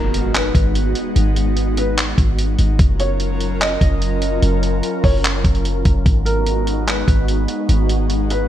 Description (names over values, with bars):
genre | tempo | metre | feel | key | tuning
hip hop, atmospheric cloud-rap | 147 BPM | 4/4 | half-time | G# dorian | A4 = 438 Hz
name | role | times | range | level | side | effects
felt-muted upright piano | melody | 0.0-8.5 s | A#4 to D#5 | -25 LUFS | equal | low-pass filter, ping-pong delay
airy breathy pad | sustained chords | 0.0-8.5 s | F#3 to A#4 | -22 LUFS | equal | chorus, sidechain pumping
clean 808-style bass | bass | 0.0-8.5 s | F#1 to G#1 | -18 LUFS | equal | none
impact | sound effects | 0.0-1.2 s | none | -31 LUFS | equal | none
lo-fi sampler-style drum kit | drums | 0.1-8.4 s | handclaps, hi-hat, kick drum | -19 LUFS | equal | gated reverb
room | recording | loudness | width
light reverb | bright 1980s-style digital production | -15 LUFS | side -11 dB against mid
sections
0.0-8.5 A section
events
impact 0.0-1.2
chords
0.0 G#m7; 2.8 F#maj7; 6.1 G#m7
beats
0.34 0.75 | 1.16 1.57 1.98 2.38 | 2.79 3.20 3.61 4.02 | 4.42 4.83 5.24 5.65 | 6.06 6.47 6.87 7.28 | 7.69 8.10